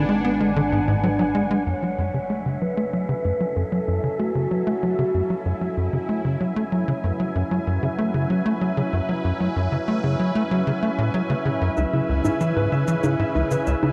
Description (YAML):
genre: ambient, sequencer-driven space music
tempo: 95 BPM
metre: 4/4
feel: straight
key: F# minor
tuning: A4 = 440 Hz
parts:
  - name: sweeping resonant pad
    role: sustained chords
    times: 0.0-13.9 s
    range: C#3 to G#5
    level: -30 LUFS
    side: equal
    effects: chorus
  - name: tight sequencer bass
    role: riff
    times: 0.0-13.9 s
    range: C#2 to B3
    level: -25 LUFS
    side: equal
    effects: analog chorus, tape echo
  - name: analog drone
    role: bass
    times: 0.0-1.6 s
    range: G#1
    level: -31 LUFS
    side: equal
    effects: chorus
  - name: wind-like tuned noise texture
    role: texture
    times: 0.0-13.9 s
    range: E5 to F#5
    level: -36 LUFS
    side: equal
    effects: built-in reverb
  - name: mellow horn-like synth lead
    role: melody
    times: 1.7-6.1 s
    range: F#4 to C#5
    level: -31 LUFS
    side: equal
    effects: subtle chorus, tape echo
  - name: concert harp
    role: arpeggios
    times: 11.8-13.9 s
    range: E4 to E5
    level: -29 LUFS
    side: equal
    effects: tape echo
  - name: congas and cabasa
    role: percussion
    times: 11.8-13.9 s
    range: none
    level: -31 LUFS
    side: equal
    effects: tape echo
room: wet huge ambient reverb, RT60 7.2 s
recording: worn, warbling old tape, cassette tape, warbly pitch drift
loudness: -23 LUFS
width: mono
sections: 0.0-1.7 A section; 1.7-13.9 B section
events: fade-in on analog synth pad 1.7-13.9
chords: 0.0 G#dim; 1.7 F#m7; 11.8 C#m7